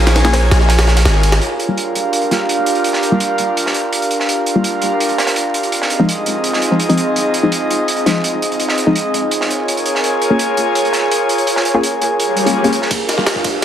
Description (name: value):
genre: drum and bass, jungle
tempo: 167 BPM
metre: 4/4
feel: straight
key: G phrygian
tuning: A4 = 438 Hz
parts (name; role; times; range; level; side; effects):
- airy breathy pad; sustained chords; 0.0-13.6 s; C4 to Ab5; -16 LUFS; right 1 dB; chorus
- long sustained 808-style bass; bass; 0.0-1.4 s; Ab1 to Bb1; -12 LUFS; equal; none
- crunchy breakbeat drum kit; drums; 0.1-13.6 s; hi-hat, snare drum; -20 LUFS; right 2 dB; high-pass filter on hats, high-pass filter on snare, high-pass filter on room
- jungle sampler-style drum kit; drums; 0.1-1.4, 12.9-13.6 s; kick drum, ride cymbal, snare drum; -17 LUFS; equal; high-pass filter on snare, high-pass filter on cymbals, high-pass filter on kick, high-pass filter on hats, high-pass filter on room
- filtered dub chord stab; stabs; 0.2-13.3 s; F3 to Ab4; -18 LUFS; left 2 dB; chorus, dub echo
- swell and riser; sound effects; 12.3-13.6 s; none; -23 LUFS; left 2 dB; none
room: moderate plate reverb, RT60 1.6 s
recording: dense, heavily limited modern master, vinyl crackle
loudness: -13 LUFS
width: side -10 dB against mid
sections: 0.0-1.4 A section; 1.4-12.9 B section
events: drop 0.0-1.4; filter sweep on synth stab 1.4-12.9; swell 12.3-12.9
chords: 0.0 Bbm7; 1.4 Gm7; 5.7 Fm7; 9.3 Bbm7; 12.9 Gm7